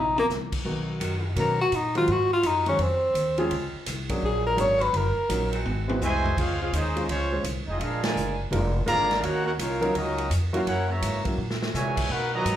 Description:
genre	jazz, big band swing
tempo	168 BPM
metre	4/4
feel	swing 64% on 8ths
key	Db major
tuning	A4 = 440 Hz
part	breathy tenor saxophone	melody	0.0-5.5 s	Bb3 to C#5	-23 LUFS	left 1 dB	plate reverb, slapback echo
part	upright bass	bass	0.0-12.6 s	F1 to C3	-29 LUFS	equal	none
part	swinging big-band drum kit	drums	0.2-12.6 s	crash cymbal, hi-hat, kick drum, ride cymbal, snare drum, toms	-33 LUFS	right 1 dB	none
part	warm baby grand piano	accompaniment	0.6-11.4 s	Eb3 to C5	-29 LUFS	equal	plate reverb
part	bright saxophone section	sustained chords	1.0-6.0 s	Db3 to Gb4	-36 LUFS	right 1 dB	plate reverb
part	warm trumpet section	melody	6.0-12.6 s	Ab3 to Bb5	-28 LUFS	equal	plate reverb, slapback echo
part	bright trombone section	second line	6.0-12.6 s	Bb2 to Gb4	-32 LUFS	right 3 dB	plate reverb, slapback echo
room	moderate club reverb, RT60 0.5 s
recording	live gig heard through the venue's PA, club reverb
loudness	-23 LUFS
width	side -11 dB against mid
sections	0.0-6.4 A section; 6.4-12.6 B section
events	drum fill 0.0, 5.7-6.4, 11.4-11.7; tenor saxophone solo 0.0-6.4; band accent 8.0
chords	0.0 N.C.; 0.6 Cbmaj7; 2.1 Ab7; 3.5 Dbmaj7; 4.2 Bb7alt; 4.9 Ebm7; 5.7 Ab7alt; 6.4 Dbmaj7; 7.8 Bb7; 9.2 Ebm7; 10.7 Gb7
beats	0.29 | 0.65 1.01 1.36 1.72 | 2.08 2.44 2.79 3.15 | 3.51 3.87 4.22 4.58 | 4.94 5.29 5.65 6.01 | 6.37 6.72 7.08 7.44 | 7.80 8.15 8.51 8.87 | 9.23 9.59 9.94 10.30 | 10.66 11.02 11.37 11.73 | 12.09 12.45

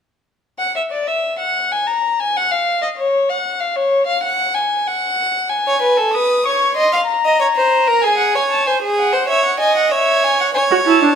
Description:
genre	classical, baroque-style fugue for string quartet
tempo	95 BPM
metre	4/4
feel	straight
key	unclear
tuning	A4 = 439 Hz
part	warm violin	melody	0.6-11.2 s	C#5 to D#6	-17 LUFS	left 3 dB	none
part	rich violin	second line	5.7-11.2 s	G#4 to E#5	-15 LUFS	right 2 dB	none
part	warm viola	accompaniment	10.7-11.1 s	D4 to F#4	-12 LUFS	right 6 dB	none
room	wet stone room reverb, RT60 1.1 s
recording	none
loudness	-14 LUFS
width	side -7 dB against mid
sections	0.4-11.2 A section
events	none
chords	0.4 N.C.; 5.5 C#5; 6.8 D#5; 8.0 G#; 9.3 C#m; 10.6 F#m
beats	| 0.43 1.07 1.71 2.35 | 2.98 3.61 4.25 4.88 | 5.51 6.14 6.77 7.41 | 8.04 8.67 9.30 9.93 | 10.55

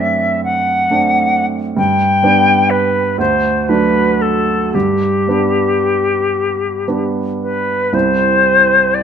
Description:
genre	classical, romantic duo for flute and grand piano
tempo	37-46 BPM (dotted quarters)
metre	6/8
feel	rubato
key	G major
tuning	A4 = 441 Hz
part	bright silver concert flute	melody	0.0-9.0 s	G4 to G5	-14 LUFS	left 2 dB	none
part	clear baby grand piano	accompaniment	0.0-9.0 s	C2 to E4	-16 LUFS	right 4 dB	none
room	light reverb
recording	close, detailed microphones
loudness	-12 LUFS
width	side -8 dB against mid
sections	0.0-7.9 A section; 7.9-9.0 B section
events	none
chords	0.0 D7/F#; 1.8 G; 3.2 D; 4.7 G; 7.9 C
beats	0.45 | 1.77 3.19 | 4.74 6.35 | 7.93

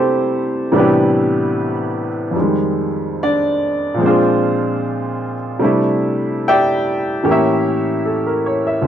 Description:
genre	jazz ballad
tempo	74 BPM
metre	4/4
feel	swing 67% on 8ths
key	unclear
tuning	A4 = 437 Hz
part	clear upright piano	solo	0.0-8.9 s	D2 to G5	-15 LUFS	equal	none
room	light reverb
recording	dry, close 1970s-style studio recording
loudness	-15 LUFS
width	side -10 dB against mid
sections	0.0-8.9 A section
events	none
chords	0.0 C69; 0.7 Am11; 2.3 Fm7; 4.0 Bb9; 5.6 C69; 7.2 A7b9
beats	0.70 1.53 | 2.35 3.16 3.98 4.80 | 5.61 6.42 7.24 8.06

